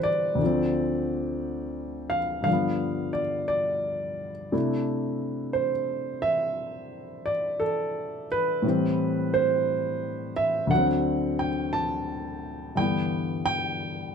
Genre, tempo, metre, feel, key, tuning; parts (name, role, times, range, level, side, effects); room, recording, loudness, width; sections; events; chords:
solo jazz; 58 BPM; 4/4; swing 67% on 8ths; G major; A4 = 439 Hz
dark grand piano; solo; 0.0-14.1 s; D2 to A5; -24 LUFS; equal
light reverb; -24 LUFS; side -6 dB against mid
0.0-14.1 A section
0.4 Dm7; 2.5 G7; 4.5 C69; 8.6 Am7; 10.7 D7; 12.8 G6